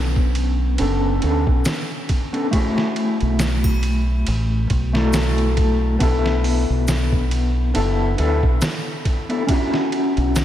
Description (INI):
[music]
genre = trip hop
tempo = 69 BPM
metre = 4/4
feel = swing 56% on 16ths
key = B dorian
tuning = A4 = 442 Hz
[part]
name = mellow electric guitar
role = accompaniment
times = 0.0-10.4 s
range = A3 to A4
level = -21 LUFS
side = left 2 dB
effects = tremolo, vintage 12-bit sampler grit, tape echo
[part]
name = deep dub fingered electric bass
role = bass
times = 0.0-10.4 s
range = F#1 to D2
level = -20 LUFS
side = equal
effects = none
[part]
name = trip hop sampler-style drum kit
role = drums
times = 0.2-10.4 s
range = hi-hat, kick drum, ride cymbal, snare drum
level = -23 LUFS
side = equal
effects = none
[part]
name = tube shaker and triangle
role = percussion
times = 1.7-10.4 s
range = none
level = -38 LUFS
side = left 1 dB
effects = none
[sound]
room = moderate lush hall reverb, RT60 3.1 s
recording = dreamy mix soaked in reverb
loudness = -17 LUFS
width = side -11 dB against mid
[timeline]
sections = 0.0-10.4 A section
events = none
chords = 0.0 Bm9; 2.5 F#m9/B; 6.0 E7sus4/B; 9.5 Dmaj9